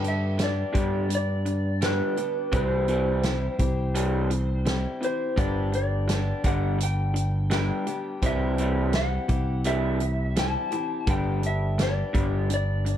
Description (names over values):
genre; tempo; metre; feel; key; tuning
folk rock and heartland rock; 84 BPM; 4/4; straight; G major; A4 = 436 Hz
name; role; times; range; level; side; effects
electric slide guitar; melody; 0.0-13.0 s; B4 to A5; -30 LUFS; left 1 dB; plate reverb, analog delay
picked old ladder-braced acoustic guitar; accompaniment; 0.0-13.0 s; G2 to G4; -34 LUFS; left 3 dB; plate reverb
electric guitar through a small old amp; riff; 0.0-13.0 s; G2 to G3; -31 LUFS; equal; spring reverb
picked electric bass; bass; 0.0-13.0 s; G1 to G2; -26 LUFS; equal; none
natural country drum kit; drums; 0.0-13.0 s; hi-hat, kick drum, snare drum; -29 LUFS; right 1 dB; none
room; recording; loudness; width
light reverb; dark, warm production; -23 LUFS; side -10 dB against mid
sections
0.0-13.0 A section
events
none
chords
0.0 G; 2.5 C; 5.4 G; 8.2 C; 11.1 G